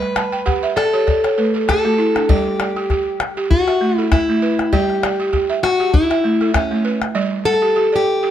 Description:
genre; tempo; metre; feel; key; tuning
west african traditional, West African string and xylophone music; 99 BPM; 4/4; swing 56% on 16ths; G lydian; A4 = 439 Hz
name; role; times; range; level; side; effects
fingerpicked plugged-in steel-string acoustic guitar; melody; 0.0-8.3 s; C#4 to B4; -18 LUFS; left 2 dB; slapback echo
balafon; arpeggios; 0.0-8.3 s; G3 to A5; -20 LUFS; right 5 dB; none
calabash; percussion; 0.0-7.1 s; none; -19 LUFS; left 2 dB; none
room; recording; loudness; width
light reverb; none; -15 LUFS; side -10 dB against mid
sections
0.0-7.2 A section; 7.2-8.3 B section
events
balafon fill 0.2-2.3; steel-string acoustic guitar solo 7.2-8.3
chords
0.0 G; 1.1 N.C.; 2.3 G5; 3.5 A5; 4.7 G; 5.9 A5; 7.2 G

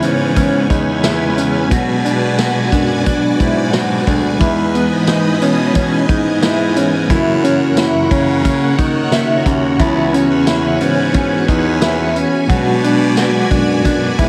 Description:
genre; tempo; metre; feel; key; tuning
dream pop; 89 BPM; 4/4; straight; E lydian; A4 = 440 Hz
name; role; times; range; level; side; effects
electric guitar at the edge of break-up; accompaniment; 0.0-14.3 s; F#2 to G#4; -20 LUFS; equal; tremolo, lush chorus, analog delay
string machine, violins; sustained chords; 0.0-14.3 s; E3 to G#5; -24 LUFS; equal; ensemble chorus
mellow electric guitar; arpeggios; 0.0-14.3 s; B3 to E5; -19 LUFS; equal; analog chorus, analog delay
bright baritone saxophone; bass; 0.0-14.3 s; C#2 to D#3; -23 LUFS; equal; none
vintage drum kit; drums; 0.0-14.3 s; hi-hat, kick drum, snare drum, tambourine; -21 LUFS; equal; analog delay
room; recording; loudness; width
light reverb; echo-heavy mix; -14 LUFS; mono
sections
0.0-14.3 A section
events
none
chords
0.0 C#m7; 1.7 Bm6; 4.4 Emaj7; 7.1 F#7; 9.8 C#m7; 12.5 Bm6

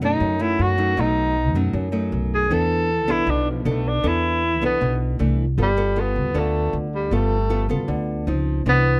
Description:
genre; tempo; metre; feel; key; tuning
bossa nova; 156 BPM; 4/4; straight; unclear; A4 = 444 Hz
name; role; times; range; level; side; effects
breathy tenor saxophone; melody; 0.0-9.0 s; F3 to A4; -24 LUFS; equal; none
nylon-string guitar; accompaniment; 0.0-9.0 s; F#2 to A4; -27 LUFS; equal; none
upright bass; bass; 0.0-9.0 s; G1 to F#2; -26 LUFS; equal; none
room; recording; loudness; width
little or no reverb; close, detailed microphones; -21 LUFS; mono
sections
0.0-5.6 A section; 5.6-9.0 B section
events
tenor saxophone solo 0.0-5.6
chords
0.0 B7; 2.5 E7sus4; 5.2 C69; 5.6 G9; 8.3 Dbmaj9

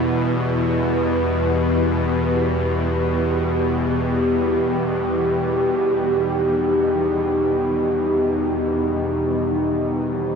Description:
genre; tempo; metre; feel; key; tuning
dark ambient drone; free time; none; none; E harmonic minor; A4 = 440 Hz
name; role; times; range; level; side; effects
dark analog pad; sustained chords; 0.0-10.4 s; B3 to C5; -20 LUFS; right 1 dB; chorus
bowed-like drone; drone; 0.0-10.4 s; E2 to B2; -21 LUFS; left 1 dB; built-in reverb
room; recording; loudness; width
wet huge ambient reverb, RT60 7.7 s; none; -18 LUFS; side -6 dB against mid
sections
0.0-10.4 A section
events
none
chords
0.0 Em; 5.6 Cm (rootless)

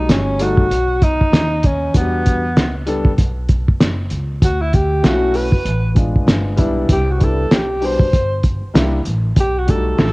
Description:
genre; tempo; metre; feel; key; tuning
hip hop, jazz-hop; 97 BPM; 4/4; swing 57% on 16ths; unclear; A4 = 440 Hz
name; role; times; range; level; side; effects
breathy alto saxophone; melody; 0.0-10.1 s; B3 to C5; -19 LUFS; equal; cassette tape
dark baby grand piano; accompaniment; 0.0-10.1 s; F#3 to A4; -22 LUFS; left 1 dB; cassette tape
upright bass; bass; 0.0-10.1 s; F#1 to E2; -20 LUFS; equal; none
cloth-damped thuddy drum kit; drums; 0.1-10.1 s; hi-hat, kick drum, snare drum; -15 LUFS; equal; vintage 12-bit sampler grit, cassette tape
room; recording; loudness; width
small room ambience; home recording on cassette; -14 LUFS; side -22 dB against mid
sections
0.0-10.1 A section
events
none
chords
0.0 B7b13; 1.9 Em9; 4.4 Dmaj9; 6.3 G7b9; 6.9 Cmaj9; 8.7 C9; 9.4 B7b13

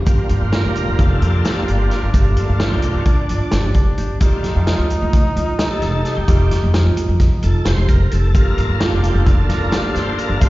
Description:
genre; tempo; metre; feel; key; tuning
progressive instrumental, band music in an uneven meter; 261 BPM (eighths); 9/8; straight; G minor; A4 = 440 Hz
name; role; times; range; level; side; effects
warm flugelhorn; second line; 0.1-10.5 s; D4 to Eb4; -27 LUFS; left 1 dB; slapback echo
bright tonewheel organ; accompaniment; 0.1-10.5 s; G3 to D5; -24 LUFS; equal; overdrive, chorus vibrato, slow rotary speaker, slapback echo
vibraphone with medium hard mallets; arpeggios; 0.1-10.5 s; F4 to G4; -27 LUFS; right 2 dB; slapback echo
upright bass; bass; 0.1-10.5 s; F1 to G2; -17 LUFS; equal; none
vintage drum kit; drums; 0.1-10.5 s; hi-hat, kick drum, snare drum; -18 LUFS; equal; none
tube shaker; percussion; 0.1-10.5 s; none; -42 LUFS; right 4 dB; none
room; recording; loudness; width
little or no reverb; live gig heard through the venue's PA, recital hall reverb, nothing above 7.5 kHz; -14 LUFS; side -18 dB against mid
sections
0.1-10.5 A section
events
tonewheel organ solo 0.1-10.5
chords
0.1 Gm7; 4.2 Fadd9

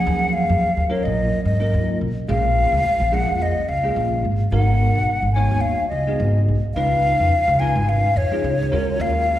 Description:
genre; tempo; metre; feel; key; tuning
electric jazz fusion; 107 BPM; 4/4; swing 55% on 16ths; G# dorian; A4 = 435 Hz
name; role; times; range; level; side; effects
breathy mellow silver concert flute; melody; 0.0-9.4 s; C#5 to G#5; -21 LUFS; left 1 dB; slapback echo, analog delay
bell-like tine electric piano; accompaniment; 0.0-9.4 s; E#3 to C#5; -25 LUFS; right 1 dB; ensemble chorus, slapback echo
upright bass; bass; 0.1-9.4 s; G#1 to G#2; -21 LUFS; equal; none
room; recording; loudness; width
light reverb; live gig heard through the venue's PA, recital hall reverb; -17 LUFS; side -13 dB against mid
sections
0.0-9.4 A section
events
none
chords
0.0 D#m11; 2.3 A#m7; 4.5 G#m7; 6.8 C#9; 8.7 D#m11

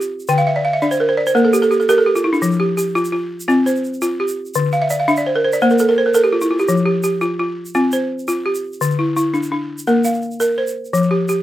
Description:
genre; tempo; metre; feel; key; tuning
west african traditional, West African string and xylophone music; 113 BPM (dotted quarters); 12/8; straight; F major; A4 = 439 Hz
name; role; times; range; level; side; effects
balafon; arpeggios; 0.0-11.4 s; D3 to G5; -15 LUFS; equal; none
tube shaker; percussion; 0.0-11.4 s; none; -32 LUFS; right 3 dB; none
room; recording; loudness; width
light reverb; rough home demo mix; -15 LUFS; side -13 dB against mid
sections
0.0-11.4 A section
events
balafon fill 0.3-2.4, 4.7-6.7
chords
0.3 Dm11; 1.4 N.C.; 2.4 F5; 4.6 Dm9; 5.6 N.C.; 6.7 F5; 8.8 Dsus2; 9.9 Bb

